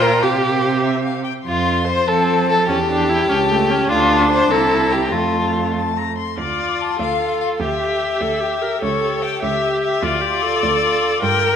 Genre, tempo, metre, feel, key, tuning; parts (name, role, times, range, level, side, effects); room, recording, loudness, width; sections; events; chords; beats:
quick classical-period movement for string quartet; 99 BPM (dotted quarters); 6/8; straight; F major, D minor from 6.4 s; A4 = 441 Hz
rich violin; melody; 0.0-11.6 s; C#5 to C6; -22 LUFS; left 8 dB
rich violin; second line; 0.0-11.6 s; F4 to C5; -20 LUFS; left 2 dB
rich viola; accompaniment; 0.0-11.6 s; A3 to Bb4; -21 LUFS; right 2 dB
rich cello; bass; 0.0-11.6 s; C2 to F3; -23 LUFS; right 5 dB
wet concert hall reverb, RT60 2.4 s; -16 LUFS; side -8 dB against mid
0.0-6.4 A section; 6.4-11.6 B section
0.2 Csus4; 1.5 F; 2.7 A7/E; 3.9 Dm; 4.5 C7; 5.1 F; 6.4 Dm; 7.6 Dsus24; 8.8 A7/C#; 10.0 Dm
| 0.21 0.84 | 1.46 2.08 | 2.69 3.29 | 3.89 4.50 | 5.12 5.75 | 6.38 7.00 | 7.61 8.22 | 8.82 9.42 | 10.03 10.63 | 11.22